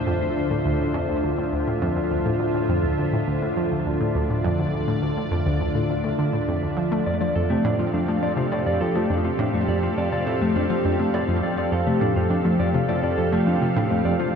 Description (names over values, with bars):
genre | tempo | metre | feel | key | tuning
ambient, sequencer-driven space music | 103 BPM | 4/4 | straight | D minor | A4 = 440 Hz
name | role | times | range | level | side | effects
evolving wavetable pad | sustained chords | 0.0-14.4 s | D3 to F5 | -24 LUFS | equal | chorus, built-in reverb, shimmer reverb
analog pluck | riff | 0.0-14.3 s | D2 to A3 | -24 LUFS | equal | chorus, tape echo
mellow electric guitar | arpeggios | 7.1-14.3 s | A3 to D5 | -26 LUFS | left 1 dB | auto-pan, tape echo, shimmer reverb
room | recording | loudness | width
wet cathedral reverb, RT60 5.1 s | in a vast, echoing space | -20 LUFS | side -6 dB against mid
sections
0.0-14.4 A section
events
none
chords
0.0 Dm7; 7.1 Fadd9